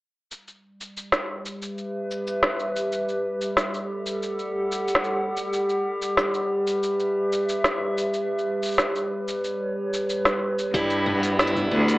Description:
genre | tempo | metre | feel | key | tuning
folktronica | 92 BPM | 4/4 | straight | G lydian | A4 = 445 Hz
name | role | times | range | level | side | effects
warbly tape-like pad | sustained chords | 1.4-12.0 s | G3 to F#5 | -26 LUFS | equal | chorus, built-in reverb
organic electronic drum kit | drums | 0.3-12.0 s | hi-hat, shaker, snare drum, toms | -25 LUFS | equal | none
picked twelve-string acoustic guitar | arpeggios | 10.7-12.0 s | G2 to E4 | -24 LUFS | equal | none
clear cello | bass | 10.7-11.9 s | D2 to G2 | -23 LUFS | equal | none
electronic kick drum | drums | 10.7-10.9 s | none | -31 LUFS | equal | none
room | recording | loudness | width
moderate studio reverb, RT60 0.5 s | AM radio sound | -23 LUFS | side -20 dB against mid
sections
0.3-10.7 A section; 10.7-12.0 B section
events
none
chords
0.3 G6; 8.1 G; 10.7 G6

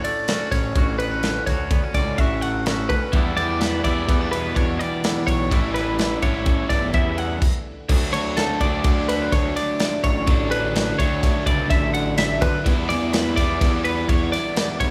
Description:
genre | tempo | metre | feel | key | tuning
math rock and midwest emo | 126 BPM | 5/4 | straight | unclear | A4 = 440 Hz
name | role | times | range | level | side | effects
twangy electric guitar | accompaniment | 0.0-9.8 s | D2 to F#4 | -32 LUFS | equal | none
twelve-string electric guitar | arpeggios | 0.0-14.9 s | A4 to F#5 | -28 LUFS | equal | none
modern studio drum kit | drums | 0.0-14.9 s | crash cymbal, kick drum, ride cymbal, snare drum | -25 LUFS | equal | none
fuzz picked electric bass | bass | 0.5-14.9 s | G1 to E2 | -29 LUFS | equal | overdrive
overdriven electric guitar | riff | 3.1-14.9 s | A2 to E4 | -28 LUFS | equal | none
room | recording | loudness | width
moderate recital hall reverb, RT60 1.6 s | recorded in a church or concert hall | -21 LUFS | mono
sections
0.0-7.9 A section; 7.9-14.9 B section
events
stop 7.4-7.9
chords
0.0 Dmaj9; 3.1 Em7; 5.5 A7sus4; 7.9 Dmaj7; 12.7 Em7

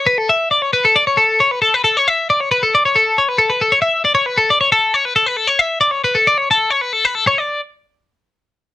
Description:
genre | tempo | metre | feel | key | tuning
rock | 136 BPM | 4/4 | straight | unclear | A4 = 440 Hz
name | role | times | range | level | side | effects
twelve-string electric guitar | solo | 0.0-7.6 s | A4 to E5 | -12 LUFS | left 2 dB | none
room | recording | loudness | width
moderate studio reverb, RT60 0.6 s | none | -12 LUFS | side -14 dB against mid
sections
0.3-7.4 A section; 7.4-8.7 B section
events
none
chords
none

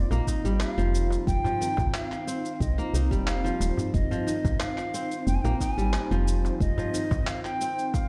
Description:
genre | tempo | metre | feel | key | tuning
organic downtempo | 90 BPM | 4/4 | straight | unclear | A4 = 441 Hz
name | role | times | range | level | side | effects
bright bansuri | melody | 0.0-8.1 s | D5 to Ab5 | -36 LUFS | equal | delay
airy breathy pad | sustained chords | 0.0-8.1 s | C4 to C5 | -37 LUFS | equal | chorus, sidechain pumping
kora | arpeggios | 0.0-8.1 s | Eb3 to Eb4 | -35 LUFS | equal | delay
woody FM bass | bass | 0.0-7.2 s | Eb1 to C2 | -28 LUFS | equal | sidechain pumping
bronze singing bowl | texture | 0.0-8.1 s | F4 | -46 LUFS | equal | none
electronic shaker and handclaps | drums | 0.1-8.1 s | none | -39 LUFS | equal | none
darbuka | percussion | 0.1-8.1 s | none | -37 LUFS | equal | none
electronic kick drum | drums | 0.3-8.1 s | none | -31 LUFS | equal | overdrive
room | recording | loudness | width
little or no reverb | played on a big sound system in a bare room, stone room reverb | -27 LUFS | mono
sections
0.0-8.1 A section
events
none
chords
0.0 F7(no3)

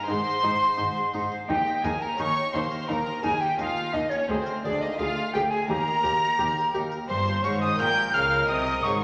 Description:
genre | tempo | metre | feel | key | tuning
classical, baroque-style concerto movement with solo episodes | 86 BPM | 4/4 | straight | unclear | A4 = 440 Hz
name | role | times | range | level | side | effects
silver concert flute | melody | 0.0-9.0 s | C5 to G6 | -28 LUFS | equal | none
warm chamber violin section | melody | 0.0-9.0 s | C5 to G6 | -36 LUFS | equal | none
rich chamber violin section | second line | 0.0-9.0 s | C4 to G5 | -36 LUFS | equal | none
harpsichord | accompaniment | 0.0-9.0 s | D2 to Eb5 | -36 LUFS | equal | none
dark chamber viola section | accompaniment | 0.1-9.0 s | Eb4 to C5 | -35 LUFS | equal | none
rich chamber double bass section | bass | 0.1-9.0 s | G1 to Eb2 | -41 LUFS | equal | none
warm chamber cello section | bass | 0.1-9.0 s | D2 to Db3 | -36 LUFS | equal | none
room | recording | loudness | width
wet concert hall reverb, RT60 1.8 s | none | -25 LUFS | mono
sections
0.0-9.0 A section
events
none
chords
0.1 Ab; 1.5 Eb5; 4.3 Bb7/D; 5.7 Eb; 7.1 Gdim; 8.5 Cm7

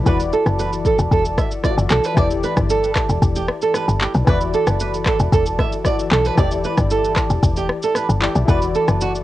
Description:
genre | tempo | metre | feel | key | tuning
afrobeats | 114 BPM | 4/4 | straight | unclear | A4 = 440 Hz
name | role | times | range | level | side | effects
warm analog keys | accompaniment | 0.0-9.2 s | E3 to D5 | -24 LUFS | left 7 dB | chorus, cassette tape
woody log drum bass | bass | 0.0-9.2 s | E1 to B1 | -19 LUFS | left 1 dB | none
flamenco guitar | riff | 0.1-9.1 s | F#4 to E5 | -20 LUFS | right 4 dB | cassette tape, analog delay
afro-pop drum kit | drums | 0.1-9.2 s | handclaps, kick drum, rim click, shaker | -21 LUFS | left 1 dB | none
room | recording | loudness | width
light reverb | home recording on cassette, faint mains hum | -15 LUFS | side -15 dB against mid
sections
0.0-9.2 A section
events
none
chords
0.1 Dadd9/E; 2.2 Em7; 4.3 Dadd9/E; 6.4 Em7; 8.5 Dadd9/E

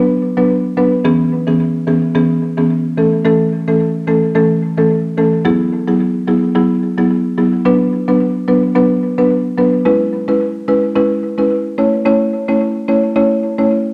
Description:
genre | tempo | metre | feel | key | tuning
afrobeats | 109 BPM | 4/4 | swing 55% on 16ths | A major | A4 = 440 Hz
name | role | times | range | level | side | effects
buzzing marimba with medium mallets | solo | 0.0-13.8 s | E3 to C#5 | -14 LUFS | equal | cassette tape, analog delay
room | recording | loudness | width
light reverb | home recording on cassette | -14 LUFS | mono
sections
0.0-13.9 A section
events
none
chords
0.0 Bm; 1.0 C#m7; 3.0 A; 5.5 Eadd9; 7.7 Bm; 9.9 C#m7; 11.8 A

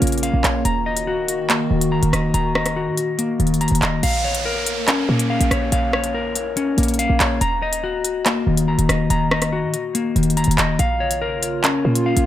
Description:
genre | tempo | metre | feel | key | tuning
hip hop, drill | 142 BPM | 4/4 | half-time | Bb minor | A4 = 441 Hz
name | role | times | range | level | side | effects
hollow soft pad | sustained chords | 0.0-4.0, 11.0-12.3 s | Db3 to Gb4 | -26 LUFS | right 4 dB | chorus
clean electric guitar | arpeggios | 0.0-12.3 s | Eb3 to Bb5 | -20 LUFS | left 2 dB | spring reverb, digital delay
short 808-style bass | bass | 0.0-12.3 s | Db1 to Bb2 | -22 LUFS | right 1 dB | none
drill drum kit | drums | 0.0-12.3 s | crash cymbal, handclaps, hi-hat, rim click | -22 LUFS | equal | none
downlifter | sound effects | 4.0-7.4 s | none | -28 LUFS | right 4 dB | none
room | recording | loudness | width
light reverb | none | -17 LUFS | side -12 dB against mid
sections
0.0-4.0 A section; 4.0-12.3 B section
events
none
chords
0.0 Bbm; 0.7 Ebm; 4.0 Bbm; 7.4 Ebm; 10.8 Bbm

